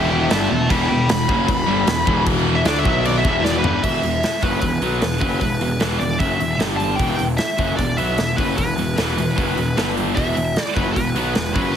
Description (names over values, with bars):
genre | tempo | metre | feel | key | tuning
hard rock | 152 BPM | 4/4 | straight | E minor | A4 = 437 Hz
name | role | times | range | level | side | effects
high-gain lead guitar | melody | 0.0-11.8 s | B4 to B5 | -23 LUFS | equal | distortion
cranked stack guitar | riff | 0.0-11.8 s | E2 to D4 | -25 LUFS | left 11 dB | overdrive
distorted electric guitar | riff | 0.0-3.8, 10.2-11.8 s | E2 to D4 | -26 LUFS | equal | overdrive
scooped high-gain guitar | riff | 0.0-11.8 s | E2 to D4 | -26 LUFS | right 10 dB | distortion
fuzz picked electric bass | bass | 0.0-11.7 s | E1 to D2 | -23 LUFS | equal | overdrive
big rock drum kit | drums | 0.3-11.7 s | crash cymbal, hi-hat, kick drum, snare drum, toms | -23 LUFS | equal | none
room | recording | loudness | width
small room ambience | heavily compressed radio sound, multiband compression | -17 LUFS | side -8 dB against mid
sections
0.0-3.8 A section; 3.8-11.8 B section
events
lead electric guitar solo 0.0-3.8; drum fill 3.4-3.8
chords
0.0 Em; 2.9 B5; 3.2 Em; 3.8 E5; 6.6 G5; 7.0 E5; 9.8 G5; 10.2 E5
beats
0.32 | 0.71 1.10 1.49 1.88 | 2.27 2.66 3.05 3.45 | 3.84 4.23 4.63 5.02 | 5.42 5.81 6.21 6.61 | 7.00 7.40 7.79 8.19 | 8.59 8.98 9.38 9.77 | 10.17 10.57 10.96 11.36 | 11.76